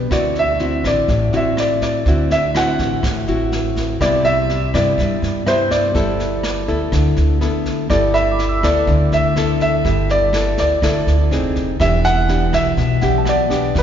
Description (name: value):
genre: bossa nova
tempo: 123 BPM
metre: 4/4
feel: straight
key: G major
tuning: A4 = 441 Hz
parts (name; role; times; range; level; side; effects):
- nylon-string guitar; accompaniment; 0.0-13.8 s; G2 to A4; -20 LUFS; left 2 dB; none
- tine electric piano; accompaniment; 0.0-0.1, 5.5-13.8 s; E5 to E6; -26 LUFS; right 6 dB; medium tremolo
- upright bass; bass; 0.0-13.8 s; E1 to G2; -20 LUFS; right 1 dB; none
- warm baby grand piano; melody; 0.1-13.8 s; B4 to F#5; -19 LUFS; right 1 dB; none
- jazz brush drum kit; drums; 0.1-13.8 s; kick drum, rim click, snare drum; -25 LUFS; equal; none
room: wet church reverb, RT60 3.2 s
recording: recorded in a church or concert hall, nothing above 7.5 kHz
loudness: -14 LUFS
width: side -9 dB against mid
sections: 0.0-7.9 A section; 7.9-13.8 A section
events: none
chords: 0.1 D9; 4.0 Cmaj7; 6.0 G69; 11.3 Fm7; 11.8 Em7